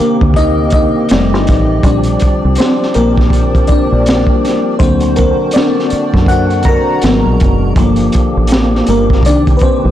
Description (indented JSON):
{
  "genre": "R&B, neo-soul",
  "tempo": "81 BPM",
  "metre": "4/4",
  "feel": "swing 61% on 16ths",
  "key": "unclear",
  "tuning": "A4 = 440 Hz",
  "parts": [
    { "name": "FM electric piano with soft pad layer", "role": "accompaniment", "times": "0.0-9.9 s", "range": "Eb3 to Bb5", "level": "-13 LUFS", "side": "left 2 dB", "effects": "chorus" },
    { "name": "percussive tonewheel organ", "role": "sustained chords", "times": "0.0-9.9 s", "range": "Cb3 to G4", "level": "-19 LUFS", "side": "right 1 dB", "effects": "slow rotary speaker, overdrive" },
    { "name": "deep dub fingered electric bass", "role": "bass", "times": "0.0-9.9 s", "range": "F1 to F#2", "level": "-14 LUFS", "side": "right 1 dB", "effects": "tube saturation" },
    { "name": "crunchy breakbeat drum kit", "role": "drums", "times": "0.2-9.8 s", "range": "hi-hat, kick drum, snare drum", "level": "-13 LUFS", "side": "right 1 dB", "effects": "none" }
  ],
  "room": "light reverb, small room ambience",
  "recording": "blown-out, overdriven recording, overdrive",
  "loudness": "-9 LUFS",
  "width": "side -12 dB against mid",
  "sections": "0.0-9.9 A section",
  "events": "FM electric piano solo 0.0-9.9",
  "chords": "0.0 Cm9; 1.1 F13; 1.8 Bb6; 4.8 D7b13; 7.0 Abm9; 7.8 Gm9; 9.2 Cm7",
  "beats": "0.36 1.10 | 1.84 2.58 3.32 4.06 | 4.80 5.54 6.29 7.03 | 7.77 8.51 9.25"
}